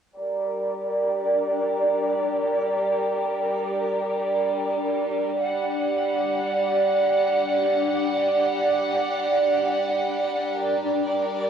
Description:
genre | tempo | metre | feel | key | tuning
trip hop | free time | none | none | G harmonic minor | A4 = 440 Hz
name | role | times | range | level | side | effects
rich studio violin section | sustained chords | 0.2-11.5 s | G3 to F#5 | -22 LUFS | right 2 dB | low-pass filter, cassette tape
backwards swelling texture | texture | 1.0-11.5 s | D4 to D5 | -31 LUFS | left 3 dB | built-in reverb, cassette tape
room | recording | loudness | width
wet small room reverb, RT60 0.5 s | home recording on cassette, studio ambience | -21 LUFS | side -8 dB against mid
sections
0.2-11.5 A section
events
filter sweep on violin section 0.2-11.5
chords
0.2 Gm; 5.4 D/G; 10.6 Gm

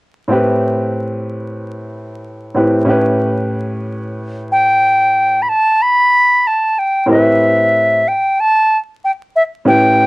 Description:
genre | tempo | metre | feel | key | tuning
hip hop | 93 BPM | 4/4 | swing 63% on 16ths | A minor | A4 = 437 Hz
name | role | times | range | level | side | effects
warm upright piano | accompaniment | 0.3-10.1 s | A2 to B4 | -15 LUFS | equal | none
concert flute | melody | 4.5-10.1 s | E5 to B5 | -11 LUFS | equal | none
room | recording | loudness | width
light reverb | dry, gritty hardware recording, vinyl crackle | -11 LUFS | side -23 dB against mid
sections
0.3-5.5 A section; 5.5-10.1 B section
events
none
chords
0.3 Am9; 2.9 A7; 5.5 Am9; 8.0 A7

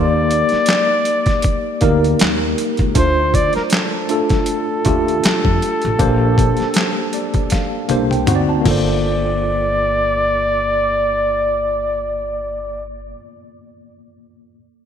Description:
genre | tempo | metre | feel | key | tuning
R&B, neo-soul | 79 BPM | 4/4 | swing 56% on 16ths | G minor | A4 = 440 Hz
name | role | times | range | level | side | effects
breathy flugelhorn | melody | 0.0-12.8 s | A4 to D5 | -19 LUFS | left 1 dB | none
tine electric piano | accompaniment | 0.0-14.6 s | A3 to A5 | -20 LUFS | equal | overdrive, fast stereo tremolo
upright bass | bass | 0.0-13.1 s | G1 to F2 | -22 LUFS | equal | none
boom bap sampler-style drum kit | drums | 0.3-8.9 s | crash cymbal, handclaps, hi-hat, kick drum, snare drum, toms | -18 LUFS | equal | overdrive, gated reverb
room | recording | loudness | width
moderate lush hall reverb, RT60 2.8 s | bright 1980s-style digital production | -14 LUFS | side -8 dB against mid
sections
0.0-9.0 A section; 9.0-12.1 B section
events
tine electric piano fill 6.8-9.0; drum fill 7.5-9.0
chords
0.0 Ebmaj7; 3.0 Dm7; 6.0 Bb69; 8.3 D7b9; 8.7 Gm11

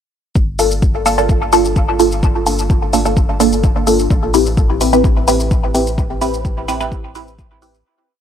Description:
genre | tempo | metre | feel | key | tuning
dub techno | 128 BPM | 4/4 | straight | G dorian | A4 = 440 Hz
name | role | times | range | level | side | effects
pure sine sub bass | bass | 0.4-7.8 s | G1 to A1 | -21 LUFS | equal | sidechain pumping
electronic kick drum | drums | 0.4-7.5 s | none | -15 LUFS | equal | none
electronic shaker and hi-hat | drums | 0.4-7.8 s | none | -24 LUFS | left 2 dB | none
filtered dub chord stab | stabs | 0.6-7.8 s | Bb3 to B4 | -15 LUFS | equal | phaser, sidechain pumping, dub echo
room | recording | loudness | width
little or no reverb | dry, gritty hardware recording | -12 LUFS | side -8 dB against mid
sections
0.4-7.9 groove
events
filter sweep on synth stab 0.4-7.9; fade-out 5.4-7.9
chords
0.4 Gm7; 4.1 Am7

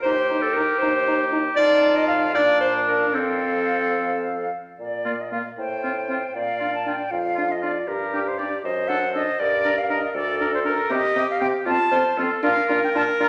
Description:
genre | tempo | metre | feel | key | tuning
quick classical-period movement for wind quintet | 78 BPM (dotted quarters) | 6/8 | rubato | Bb major | A4 = 439 Hz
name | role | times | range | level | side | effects
bright concert flute | melody | 0.0-13.3 s | Bb4 to Bb5 | -28 LUFS | equal | none
clear oboe | second line | 0.0-13.3 s | C4 to Bb4 | -29 LUFS | equal | none
bright clarinet | accompaniment | 0.0-13.3 s | F4 to F5 | -26 LUFS | equal | none
mellow bassoon | bass | 0.0-13.3 s | D2 to C3 | -33 LUFS | equal | none
warm French horn | accompaniment | 0.1-13.3 s | Bb3 to Eb4 | -32 LUFS | equal | none
room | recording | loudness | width
wet recital hall reverb, RT60 1.5 s | none | -22 LUFS | mono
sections
0.0-4.8 A section; 4.8-13.3 B section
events
none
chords
0.0 Cm7/Eb; 1.6 F7; 2.3 Bb; 3.1 F; 4.8 Bb; 5.6 F/A; 6.4 Bb; 7.9 Gm; 8.6 D/F#; 9.4 Gm; 10.9 Cm; 11.7 F; 12.4 Bb

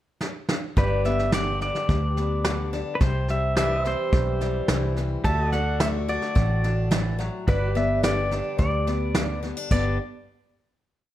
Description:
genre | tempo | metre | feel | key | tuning
honky-tonk and classic country | 107 BPM | 4/4 | straight | G major | A4 = 440 Hz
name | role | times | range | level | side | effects
soft brush drum kit | drums | 0.2-9.8 s | crash cymbal, hi-hat, kick drum, snare drum | -26 LUFS | equal | none
pedal steel guitar | melody | 0.8-10.0 s | B4 to A5 | -28 LUFS | right 1 dB | none
picked steel-string acoustic guitar | accompaniment | 0.8-10.0 s | G2 to G4 | -30 LUFS | left 5 dB | none
pedal steel guitar | sustained chords | 0.8-9.7 s | F#4 to E5 | -33 LUFS | equal | none
vintage muted fingered electric bass | bass | 0.8-10.0 s | G1 to D2 | -26 LUFS | equal | none
room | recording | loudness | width
light reverb | dark, warm production | -22 LUFS | side -13 dB against mid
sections
0.0-0.8 pickup bar; 0.8-9.7 verse; 9.7-11.1 final chord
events
drum fill 0.2-0.8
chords
0.0 N.C.; 0.8 G; 3.0 C; 5.2 D; 7.5 G

